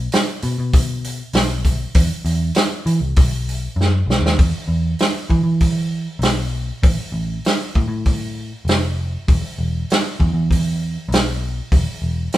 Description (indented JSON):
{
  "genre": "blues rock power trio and southern rock",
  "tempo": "98 BPM",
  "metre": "4/4",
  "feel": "straight",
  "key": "unclear",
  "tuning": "A4 = 443 Hz",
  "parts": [
    { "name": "vintage muted picked electric bass", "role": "bass", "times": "0.0-12.3 s", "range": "E1 to E3", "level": "-20 LUFS", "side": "equal", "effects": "none" },
    { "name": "vintage drum kit", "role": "drums", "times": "0.1-12.4 s", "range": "hi-hat, kick drum, snare drum", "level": "-17 LUFS", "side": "equal", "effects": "none" }
  ],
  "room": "light reverb",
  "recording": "band playing live in one room",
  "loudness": "-16 LUFS",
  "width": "side -14 dB against mid",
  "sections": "0.0-4.4 A section; 4.4-12.4 B section",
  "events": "drum fill 3.8-4.4",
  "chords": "none"
}